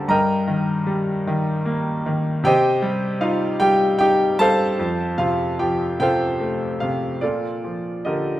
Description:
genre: classical, lyrical solo piano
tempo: 50 BPM (dotted quarters)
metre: 6/8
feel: uneven beats, rubato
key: Bb major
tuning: A4 = 438 Hz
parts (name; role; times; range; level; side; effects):
- bright grand piano; solo; 0.0-8.4 s; F2 to C6; -18 LUFS; equal; none
room: moderate recital hall reverb, RT60 1.6 s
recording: none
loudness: -18 LUFS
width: side -14 dB against mid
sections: 0.0-7.2 A section; 7.2-8.4 B section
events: none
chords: 0.1 Eb/G; 2.5 Cm; 4.8 F; 7.2 Bbmaj7

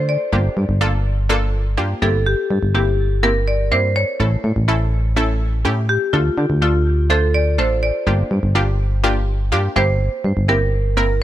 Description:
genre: dance-pop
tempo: 124 BPM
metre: 4/4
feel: straight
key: unclear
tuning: A4 = 440 Hz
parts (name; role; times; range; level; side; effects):
- wide unison pluck; accompaniment; 0.0-11.2 s; A3 to C5; -22 LUFS; equal; none
- solid FM bass; bass; 0.0-11.2 s; G1 to D3; -18 LUFS; equal; none
- marimba with medium hard mallets; melody; 0.1-11.1 s; F4 to D5; -21 LUFS; equal; dub echo
room: small room reverb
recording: none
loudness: -15 LUFS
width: side -13 dB against mid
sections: 0.0-11.2 A section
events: none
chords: 0.3 Gm7; 2.0 C7/G; 4.2 A; 6.1 Dm; 8.1 Gm7; 9.8 C7/G

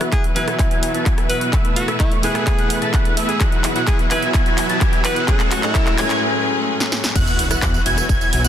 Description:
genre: EDM, festival progressive house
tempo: 128 BPM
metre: 4/4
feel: straight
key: E major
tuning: A4 = 436 Hz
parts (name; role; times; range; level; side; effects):
- bright concert grand piano; accompaniment; 0.0-7.2 s; E3 to E4; -26 LUFS; equal; sidechain pumping, tape echo
- bright studio string section; sustained chords; 0.0-8.5 s; A2 to B4; -27 LUFS; left 1 dB; sidechain pumping
- wide unison lead; arpeggios; 0.0-8.5 s; C#6 to A6; -25 LUFS; equal; sidechain pumping, tape echo
- dense compressed supersaw; riff; 0.0-8.5 s; A3 to A5; -24 LUFS; right 1 dB; sidechain pumping, low-pass filter, tape echo
- big-room dance drum kit; drums; 0.0-8.5 s; crash cymbal, handclaps, hi-hat, rim click, snare drum, tambourine; -24 LUFS; equal; none
- riser and sub drop; sound effects; 2.2-8.5 s; none; -29 LUFS; equal; none
- bright alto saxophone; melody; 0.1-6.2 s; E4 to B4; -26 LUFS; equal; tape echo
- electronic kick drum; drums; 0.1-8.2 s; none; -18 LUFS; equal; none
- detuned saw bass; bass; 7.2-8.5 s; E1 to E2; -23 LUFS; equal; sidechain pumping
room: moderate scoring stage reverb, RT60 1.5 s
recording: dense, heavily limited modern master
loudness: -15 LUFS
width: side -10 dB against mid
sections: 0.0-7.2 A section; 7.2-8.5 B section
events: build-up 0.0-7.2; drum fill 0.0-6.2, 6.8-7.2; filter sweep on supersaw synth 0.0-7.2; filter sweep on analog synth lead 0.0-7.2; riser 2.2-6.2; drop 7.2-8.5; impact 7.2-8.5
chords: 0.0 Esus2; 1.5 Asus2; 3.4 Bsus4; 5.3 F#madd9; 7.2 Esus2

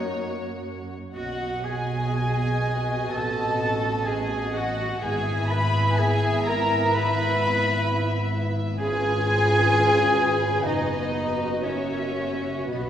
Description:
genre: classical, slow romantic movement for string orchestra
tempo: 62 BPM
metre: 4/4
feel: uneven beats, rubato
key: B major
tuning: A4 = 438 Hz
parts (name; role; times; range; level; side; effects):
- warm studio violin section; melody; 0.0-12.9 s; B4 to E5; -33 LUFS; left 5 dB; none
- dark studio violin section; second line; 0.0-12.9 s; B4 to B5; -28 LUFS; left 1 dB; none
- dark studio viola section; accompaniment; 0.0-12.9 s; A#3 to F#4; -31 LUFS; right 1 dB; none
- dark studio double bass section; bass; 0.0-12.9 s; F#1 to F#2; -28 LUFS; equal; none
- warm studio cello section; bass; 0.0-12.9 s; B3 to B4; -26 LUFS; right 1 dB; none
room: wet concert hall reverb, RT60 2.5 s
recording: heard from further back in the room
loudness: -21 LUFS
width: side -10 dB against mid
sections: 0.0-12.9 A section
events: none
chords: 0.0 F#; 1.2 B; 3.1 B7/A; 5.0 E/G#; 8.8 C#7/G#; 10.7 B/F#; 11.7 F#7

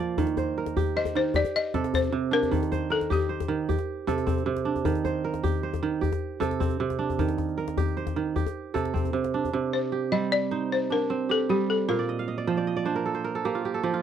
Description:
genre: west african traditional, West African string and xylophone music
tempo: 102 BPM (dotted quarters)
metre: 12/8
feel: straight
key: C dorian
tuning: A4 = 440 Hz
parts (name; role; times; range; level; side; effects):
- kora; arpeggios; 0.0-14.0 s; Bb2 to G5; -27 LUFS; right 6 dB; none
- djembe; percussion; 0.2-9.5 s; none; -30 LUFS; left 5 dB; none
- balafon; melody; 1.0-3.8, 9.7-12.4 s; G4 to Eb5; -27 LUFS; left 6 dB; none
room: light reverb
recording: dry, close 1970s-style studio recording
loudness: -24 LUFS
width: side -9 dB against mid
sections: 0.2-9.5 A section; 9.5-14.0 B section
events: drum fill 0.0; kora fill 11.9-14.0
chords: 0.2 Eb; 1.3 Cm; 2.5 Eb; 3.7 C5; 4.8 Eb; 6.0 C5; 7.2 Eb; 8.4 C5; 9.5 Cm; 11.9 Bb

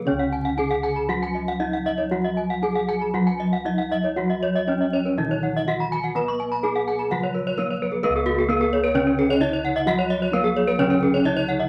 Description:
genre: gamelan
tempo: 117-131 BPM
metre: 4/4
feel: straight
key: Db slendro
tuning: A4 = 441 Hz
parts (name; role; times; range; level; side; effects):
- gamelan-type bronze metallophone; melody; 0.0-11.7 s; Cb4-45c to Cb5-45c; -28 LUFS; equal; none
- gamelan-type bronze metallophone; accompaniment; 0.0-11.7 s; Db3 to Cb4-45c; -31 LUFS; equal; none
- gamelan-type bronze metallophone; arpeggios; 0.0-11.6 s; Gb4-35c to Cb6-45c; -30 LUFS; equal; none
- gamelan-type bossed gongs; bass; 0.0-11.7 s; Db2 to Cb5-45c; -32 LUFS; equal; none
- gamelan-type bronze metallophone; arpeggios; 0.2-11.7 s; Ab4+25c to Db6; -29 LUFS; equal; none
- mellow hollow xiao; second line; 8.6-11.7 s; Ab4+26c to Gb5-33c; -35 LUFS; equal; none
room: moderate studio reverb, RT60 0.5 s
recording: vinyl crackle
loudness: -23 LUFS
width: mono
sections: 0.0-8.0 A section; 8.0-11.7 B section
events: none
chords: none

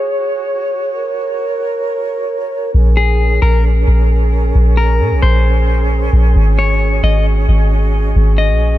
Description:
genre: hip hop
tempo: 133 BPM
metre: 4/4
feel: half-time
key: Bb minor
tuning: A4 = 439 Hz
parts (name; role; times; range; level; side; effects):
- mellow hollow small flute group; sustained chords; 0.0-8.8 s; Db4 to Db5; -19 LUFS; right 2 dB; low-pass filter
- soft 808-style bass; bass; 2.7-8.8 s; Ab1 to Bb2; -11 LUFS; equal; none
- clean electric guitar; melody; 3.0-8.8 s; Ab4 to Eb5; -20 LUFS; left 5 dB; low-pass filter, tape echo
room: studio ambience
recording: dark, warm production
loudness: -11 LUFS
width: side -14 dB against mid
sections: 0.0-2.7 A section; 2.7-8.8 B section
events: filter sweep on flute section 0.0-2.7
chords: 0.0 Ab7sus4; 2.7 Bbm9; 6.4 Ab7sus4

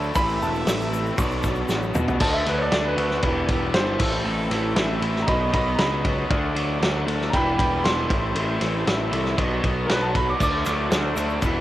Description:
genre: indie rock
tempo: 117 BPM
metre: 4/4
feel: straight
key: unclear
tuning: A4 = 441 Hz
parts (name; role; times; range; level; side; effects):
- bright upright piano; melody; 0.0-10.9 s; A#4 to D6; -27 LUFS; right 1 dB; cassette tape, tape echo
- clear trumpet; second line; 0.0-11.6 s; F#4 to E5; -34 LUFS; right 5 dB; none
- crunchy overdriven guitar; riff; 0.0-11.6 s; E2 to F#4; -29 LUFS; left 7 dB; none
- raw garage guitar; riff; 0.0-11.6 s; A2 to A4; -30 LUFS; right 6 dB; overdrive, analog chorus
- overdriven picked electric bass; bass; 0.0-11.6 s; E1 to B2; -26 LUFS; equal; none
- egg shaker; percussion; 0.0-2.1, 10.4-11.5 s; none; -42 LUFS; left 8 dB; none
- loose indie drum kit; drums; 0.2-11.5 s; crash cymbal, hi-hat, kick drum, ride cymbal, snare drum, toms; -25 LUFS; equal; none
room: small room ambience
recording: home recording on cassette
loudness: -20 LUFS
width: side -14 dB against mid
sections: 0.0-2.2 A section; 2.2-11.6 B section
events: drum fill 1.7-2.2; upright piano solo 2.2-11.6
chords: 0.2 Am; 1.2 Bm; 2.2 D; 3.2 Em; 4.0 Am; 5.3 B; 6.3 D; 7.3 Em; 8.1 Am; 9.4 B; 10.4 D

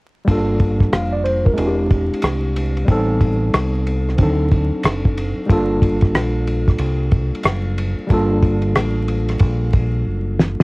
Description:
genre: hip hop, jazz-hop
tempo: 92 BPM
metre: 4/4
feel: swing 63% on 16ths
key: unclear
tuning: A4 = 441 Hz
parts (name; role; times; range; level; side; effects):
- tine electric piano; accompaniment; 0.2-10.6 s; Eb3 to F5; -20 LUFS; equal; medium stereo tremolo, cassette tape
- deep dub fingered electric bass; bass; 0.3-10.6 s; E1 to D2; -20 LUFS; equal; none
- cloth-damped thuddy drum kit; drums; 0.3-10.6 s; hi-hat, kick drum, ride cymbal, rim click, snare drum; -18 LUFS; equal; cassette tape
room: light reverb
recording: home recording on cassette, vinyl crackle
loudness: -15 LUFS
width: side -25 dB against mid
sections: 0.3-10.6 A section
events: drum fill 10.1-10.6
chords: 0.3 Gm9; 1.6 E7alt; 2.9 Am7b5; 4.2 D7b9; 5.5 Gm9

